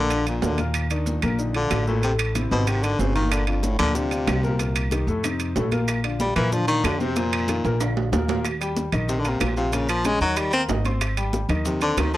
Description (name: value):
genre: Afro-Cuban jazz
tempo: 187 BPM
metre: 4/4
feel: straight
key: Bb major, Eb major from 8.4 s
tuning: A4 = 440 Hz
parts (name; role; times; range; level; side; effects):
- warm baritone saxophone; second line; 0.0-12.2 s; F2 to C4; -24 LUFS; left 2 dB; none
- warm grand piano; accompaniment; 0.0-12.2 s; A2 to C6; -28 LUFS; left 2 dB; none
- upright bass; bass; 0.0-12.2 s; G1 to Bb2; -25 LUFS; equal; none
- claves; percussion; 0.1-12.1 s; none; -36 LUFS; right 2 dB; none
- congas; percussion; 0.1-12.2 s; none; -33 LUFS; equal; none
- maracas; percussion; 0.1-12.2 s; none; -38 LUFS; right 4 dB; none
- timbales; percussion; 0.1-12.1 s; none; -29 LUFS; right 7 dB; none
- bongos; percussion; 3.3-12.2 s; none; -33 LUFS; left 5 dB; none
room: light reverb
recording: dry, gritty hardware recording, transformer saturation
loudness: -20 LUFS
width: side -15 dB against mid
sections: 0.0-8.4 A section; 8.4-12.2 A section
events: baritone saxophone solo 0.0-12.2; drum fill 7.6-8.4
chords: 0.1 Bb; 0.7 Ebsus2; 2.0 Am; 2.7 Ab9; 3.3 Gm7; 4.6 Cm7; 5.2 F7; 5.9 Bbadd9; 7.2 F5; 7.8 Bb; 8.4 Eb; 9.7 Bbm; 10.4 Eb5; 11.0 Abmaj7